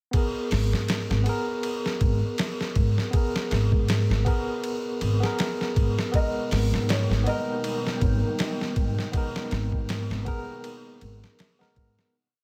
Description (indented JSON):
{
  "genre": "trip hop",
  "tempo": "80 BPM",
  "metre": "4/4",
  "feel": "swing 56% on 16ths",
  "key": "G# harmonic minor",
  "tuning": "A4 = 440 Hz",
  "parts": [
    { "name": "barky tine electric piano", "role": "accompaniment", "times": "0.1-12.2 s", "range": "G#3 to A#4", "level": "-33 LUFS", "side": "equal", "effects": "tremolo, tape echo" },
    { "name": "boom bap sampler-style drum kit", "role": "drums", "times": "0.1-12.1 s", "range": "hi-hat, kick drum, ride cymbal, snare drum", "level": "-30 LUFS", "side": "equal", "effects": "none" },
    { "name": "upright bass", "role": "bass", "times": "0.5-11.9 s", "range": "G#1 to G#2", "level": "-27 LUFS", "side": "equal", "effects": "none" },
    { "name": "string machine, cellos", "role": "sustained chords", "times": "6.1-12.1 s", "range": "B3 to A#4", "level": "-39 LUFS", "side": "equal", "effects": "ensemble chorus" },
    { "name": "flickering grainy texture", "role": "texture", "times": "7.1-12.2 s", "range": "G3 to G5", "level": "-45 LUFS", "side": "equal", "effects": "none" },
    { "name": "felt-muted upright piano", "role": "melody", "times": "6.2-11.4 s", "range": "C#5 to D#5", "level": "-36 LUFS", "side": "equal", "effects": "tape echo" }
  ],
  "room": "little or no reverb",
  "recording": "none",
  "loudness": "-26 LUFS",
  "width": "mono",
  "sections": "0.1-12.1 groove",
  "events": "fade-out 8.1-12.1",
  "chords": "0.1 G#madd9"
}